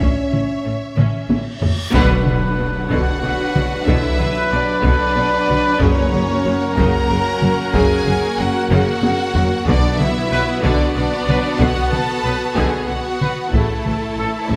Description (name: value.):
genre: cinematic, epic orchestral film score.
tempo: 62 BPM (dotted quarters).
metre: 6/8.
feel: straight.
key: B dorian.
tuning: A4 = 443 Hz.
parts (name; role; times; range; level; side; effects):
rich symphonic violin section; melody; 0.0-14.6 s; A4 to A#5; -28 LUFS; equal; none.
warm symphonic violin section; second line; 0.0-14.6 s; A3 to E5; -27 LUFS; equal; none.
rich symphonic viola section; accompaniment; 0.0-14.6 s; C#3 to A4; -27 LUFS; equal; none.
mellow French horn section; sustained chords; 0.0-14.3 s; E3 to D4; -30 LUFS; equal; none.
rich symphonic cello section; bass; 0.0-14.6 s; F#2 to B2; -27 LUFS; equal; none.
rich symphonic double bass section; bass; 0.0-14.6 s; F#1 to B1; -28 LUFS; equal; none.
taiko ensemble; drums; 0.0-14.6 s; none; -23 LUFS; equal; none.
reverse cymbal and impact; sound effects; 1.5-3.9 s; none; -32 LUFS; equal; none.
rich symphonic string section; sustained chords; 1.9-14.6 s; A3 to A5; -28 LUFS; equal; none.
clear trumpet section; stabs; 1.9-14.3 s; A4 to B4; -25 LUFS; equal; none.
timpani; percussion; 1.9-2.9, 5.8-6.7, 9.7-10.6 s; F#2 to B2; -28 LUFS; equal; none.
room: moderate concert hall reverb, RT60 2.0 s.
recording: none.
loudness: -17 LUFS.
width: mono.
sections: 0.0-1.9 A section; 1.9-14.6 A section.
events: drum fill 1.0-1.9, 8.7-9.7; reverse cymbal 1.5-1.9; band accent 1.9-2.6; impact 1.9-3.9.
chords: 0.0 A; 1.9 Bm; 5.8 F#; 9.7 Bm; 13.5 A.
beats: | 0.00 0.97 | 1.94 2.90 | 3.87 4.84 | 5.80 6.77 | 7.73 8.70 | 9.67 10.63 | 11.60 12.56 | 13.53 14.49.